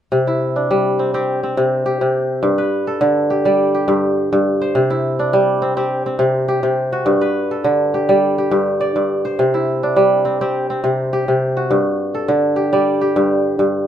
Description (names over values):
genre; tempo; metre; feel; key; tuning
west african traditional; 104 BPM; 4/4; straight; C lydian; A4 = 440 Hz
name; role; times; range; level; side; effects
kora; arpeggios; 0.1-13.9 s; G2 to D5; -15 LUFS; equal; none
room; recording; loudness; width
moderate studio reverb, RT60 0.5 s; minimal, uncompressed stereo recording; -15 LUFS; side -10 dB against mid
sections
0.1-13.9 A section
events
none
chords
0.1 C; 2.4 G; 4.8 C; 7.1 G; 9.4 C; 11.7 G5